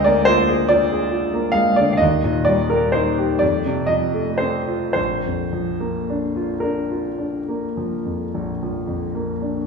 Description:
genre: classical, romantic nocturne for solo piano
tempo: 34-48 BPM (dotted quarters)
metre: 12/8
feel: rubato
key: Bb major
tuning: A4 = 438 Hz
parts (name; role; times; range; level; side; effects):
- warm concert grand piano; solo; 0.0-9.7 s; Bb1 to F5; -18 LUFS; equal; none
room: wet scoring stage reverb, RT60 1.7 s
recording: small room reverb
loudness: -18 LUFS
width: side -5 dB against mid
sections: 0.0-9.7 A section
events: none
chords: 0.0 Bb7/D; 2.0 Eb; 3.4 F; 5.0 Bb

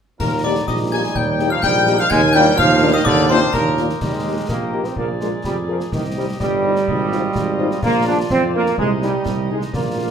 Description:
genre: military-style march for wind band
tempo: 126 BPM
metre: 2/4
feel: straight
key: Eb major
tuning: A4 = 440 Hz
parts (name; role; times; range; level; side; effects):
- clear trumpet section; melody; 0.2-10.1 s; Bb4 to Ab5; -24 LUFS; left 1 dB; none
- clear euphonium; second line; 0.2-4.0 s; Bb2 to Ab3; -22 LUFS; right 2 dB; none
- glockenspiel with brass mallets; second line; 0.2-4.0 s; Bb5 to Ab6; -25 LUFS; left 4 dB; none
- warm woodwind section; second line; 0.2-10.1 s; Eb4 to Ab5; -24 LUFS; left 3 dB; none
- clear trombone section; sustained chords; 0.2-10.1 s; Eb3 to Eb4; -22 LUFS; right 2 dB; none
- warm tuba; bass; 0.2-10.1 s; G1 to F2; -21 LUFS; right 3 dB; none
- concert snare drum, clash cymbals and concert bass drum; drums; 0.2-10.1 s; none; -26 LUFS; left 1 dB; none
- warm French horn section; accompaniment; 0.4-10.1 s; Bb3 to C5; -24 LUFS; left 4 dB; none
room: wet large studio reverb, RT60 0.8 s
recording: none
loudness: -15 LUFS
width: side -7 dB against mid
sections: 0.2-4.0 A section; 4.0-10.1 B section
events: none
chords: 0.2 Eb; 2.1 Bb/Eb; 4.0 Eb; 5.0 Bb7; 5.9 Cm; 6.9 Fm7/Ab; 7.8 Bb; 8.8 Ab/C

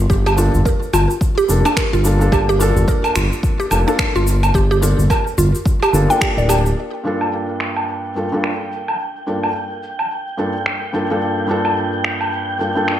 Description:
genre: organic downtempo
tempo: 108 BPM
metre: 4/4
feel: swing 59% on 16ths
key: G minor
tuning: A4 = 440 Hz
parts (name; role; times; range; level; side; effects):
- mallet-like synth pluck; arpeggios; 0.0-6.6 s; D4 to G5; -20 LUFS; right 1 dB; chorus, phaser, cassette tape, digital delay, slapback echo
- smooth gliding synth bass; bass; 0.0-6.7 s; D1 to G1; -16 LUFS; equal; sidechain pumping
- electronic kick drum; drums; 0.1-6.3 s; none; -18 LUFS; equal; overdrive
- electronic shaker, woodblock and finger snaps; drums; 0.1-13.0 s; none; -22 LUFS; equal; overdrive, low-pass filter on perc, low-pass filter on snare, low-pass filter on room
- felt-muted upright piano; accompaniment; 0.4-12.9 s; G2 to A4; -22 LUFS; equal; sidechain pumping, digital delay
- udu; percussion; 0.5-5.5 s; none; -25 LUFS; equal; none
- wind-like tuned noise texture; texture; 7.3-13.0 s; G5; -26 LUFS; right 1 dB; built-in reverb
room: moderate recital hall reverb, RT60 1.6 s, digital ambience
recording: big arena sound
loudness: -15 LUFS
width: side -11 dB against mid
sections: 0.0-6.8 A section; 6.8-13.0 B section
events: none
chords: 0.0 Gm7

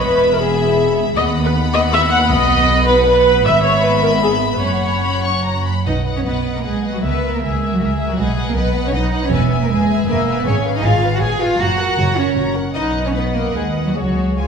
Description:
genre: quick classical-period movement for string orchestra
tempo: 157 BPM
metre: 3/4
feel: rubato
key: B major, F# major from 10.5 s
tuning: A4 = 440 Hz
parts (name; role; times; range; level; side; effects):
- dark studio violin section; melody; 0.0-14.5 s; C#5 to C#6; -25 LUFS; left 4 dB; none
- clear studio violin section; second line; 0.0-14.5 s; B3 to G#5; -23 LUFS; left 2 dB; none
- dark studio viola section; accompaniment; 0.0-14.5 s; F#4 to F#5; -18 LUFS; equal; none
- dark studio double bass section; bass; 0.0-14.5 s; E1 to D#2; -20 LUFS; right 2 dB; none
- warm studio cello section; bass; 0.0-14.5 s; D#2 to G#4; -21 LUFS; right 2 dB; none
room: wet recital hall reverb, RT60 1.6 s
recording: heard from further back in the room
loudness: -14 LUFS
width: side -6 dB against mid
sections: 0.0-5.9 A section; 5.9-14.5 A section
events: none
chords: 0.0 E; 1.2 B/D#; 2.3 B; 3.4 E/G#; 4.6 F#sus4; 5.9 B; 7.0 A#dim/C#; 8.2 B; 9.3 E; 10.5 C#7/G#; 11.6 F#; 12.8 B; 14.0 C#

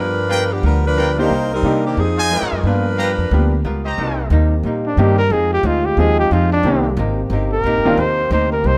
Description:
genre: jazz, big band swing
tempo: 180 BPM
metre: 4/4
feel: swing 62% on 8ths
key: C minor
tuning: A4 = 440 Hz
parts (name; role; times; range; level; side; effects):
- warm saxophone section; melody; 0.0-3.6 s; Eb3 to C5; -22 LUFS; equal; none
- archtop guitar, miked and amplified; accompaniment; 0.0-8.8 s; C3 to A#4; -28 LUFS; equal; none
- upright bass; bass; 0.0-8.8 s; Eb1 to C3; -21 LUFS; equal; none
- brilliant trumpet section; stabs; 0.3-4.3 s; F4 to A#5; -26 LUFS; equal; none
- clear baby grand piano; accompaniment; 1.2-8.0 s; Eb3 to G4; -23 LUFS; equal; none
- warm trombone section; sustained chords; 4.0-8.8 s; C3 to G4; -29 LUFS; equal; none
- breathy trumpet; melody; 4.9-8.8 s; D4 to C5; -20 LUFS; equal; none
room: light reverb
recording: none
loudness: -17 LUFS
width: mono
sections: 0.0-4.0 A section; 4.0-8.8 B section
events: trumpet solo 4.0-8.8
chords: 0.0 G7#9; 1.3 Cm7; 2.0 Fm7; 2.6 G7#9; 4.0 Cm7; 5.3 Fm7; 6.6 Cm7

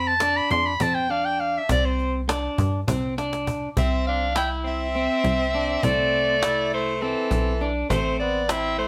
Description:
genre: progressive instrumental, band music in an uneven meter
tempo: 203 BPM (eighths)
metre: 7/8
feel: straight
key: C major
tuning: A4 = 437 Hz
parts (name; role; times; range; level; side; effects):
- bright soprano saxophone; melody; 0.0-8.9 s; A4 to C6; -26 LUFS; equal; none
- electric guitar at the edge of break-up; arpeggios; 0.0-8.9 s; C4 to E4; -31 LUFS; equal; none
- plucky analog bass; bass; 0.0-8.9 s; A1 to G2; -30 LUFS; equal; none
- cajon; drums; 0.2-8.9 s; none; -31 LUFS; equal; none
- raspy alto saxophone; second line; 3.8-8.9 s; E3 to E4; -32 LUFS; equal; none
room: moderate studio reverb, RT60 0.8 s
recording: band playing live in one room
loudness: -23 LUFS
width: mono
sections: 0.0-3.8 A section; 3.8-8.9 B section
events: soprano saxophone solo 0.0-3.8; drum fill 2.9-3.8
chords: 0.0 Dm/F; 1.7 C5; 3.8 C6; 7.9 Am

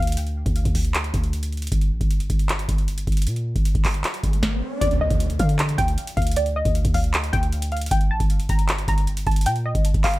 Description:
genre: hip hop, trap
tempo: 155 BPM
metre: 4/4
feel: half-time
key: unclear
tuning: A4 = 440 Hz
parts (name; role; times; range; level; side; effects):
- warbly dusty pluck; melody; 0.0-0.2, 4.8-10.2 s; D5 to Bb5; -26 LUFS; equal; chorus, ping-pong delay
- hard-hitting 808-style bass; bass; 0.0-10.2 s; G1 to D3; -24 LUFS; equal; none
- booming analog drum machine; drums; 0.0-10.2 s; handclaps, hi-hat, kick drum, snare drum; -22 LUFS; equal; none
- riser and impact; sound effects; 4.2-6.4 s; none; -32 LUFS; equal; none
room: little or no reverb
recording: none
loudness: -20 LUFS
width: side -18 dB against mid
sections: 0.0-4.8 A section; 4.8-10.2 B section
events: break 0.2-4.8; riser 4.2-4.8; impact 4.8-6.4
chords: 0.0 N.C.; 4.8 Dmadd11; 7.9 Gm

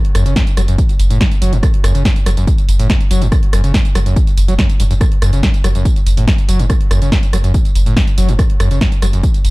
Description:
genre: driving peak-time techno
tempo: 142 BPM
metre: 4/4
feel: straight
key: F# minor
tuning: A4 = 440 Hz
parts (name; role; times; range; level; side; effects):
- techno drum kit; drums; 0.0-9.5 s; hi-hat, rim click, snare drum, tambourine; -21 LUFS; right 1 dB; sidechain pumping on hats, sidechain pumping on perc
- screaming distorted acid line; riff; 0.1-9.2 s; F#2 to F#3; -19 LUFS; equal; distortion, wide subtle chorus, sidechain pumping
- saturated sub bass; bass; 0.1-9.5 s; F#1; -15 LUFS; equal; sidechain pumping, low-pass filter
- electronic kick drum; drums; 0.4-9.3 s; none; -14 LUFS; equal; none
room: little or no reverb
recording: dark, warm production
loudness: -11 LUFS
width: side -22 dB against mid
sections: 0.0-9.5 A section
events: none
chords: none

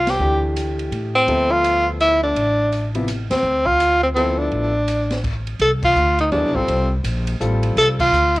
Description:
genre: modal jazz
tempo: 167 BPM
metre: 3/4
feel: swing 63% on 8ths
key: D dorian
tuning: A4 = 438 Hz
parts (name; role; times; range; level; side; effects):
- breathy tenor saxophone; melody; 0.0-8.4 s; C4 to A4; -17 LUFS; equal; cassette tape
- upright bass; bass; 0.0-8.4 s; A1 to A2; -23 LUFS; equal; none
- open jazz drum kit; drums; 0.1-8.4 s; crash cymbal, hi-hat, kick drum, ride cymbal, snare drum; -30 LUFS; equal; cassette tape
- clear grand piano; accompaniment; 0.2-7.9 s; C3 to E5; -25 LUFS; left 2 dB; cassette tape
room: light reverb, studio ambience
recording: home recording on cassette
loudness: -16 LUFS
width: side -19 dB against mid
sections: 0.0-5.6 A section; 5.6-8.4 B section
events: band accent 0.0, 3.3, 5.8, 7.9; stop 5.2-5.6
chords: 0.0 Dmadd9; 5.6 Csus2

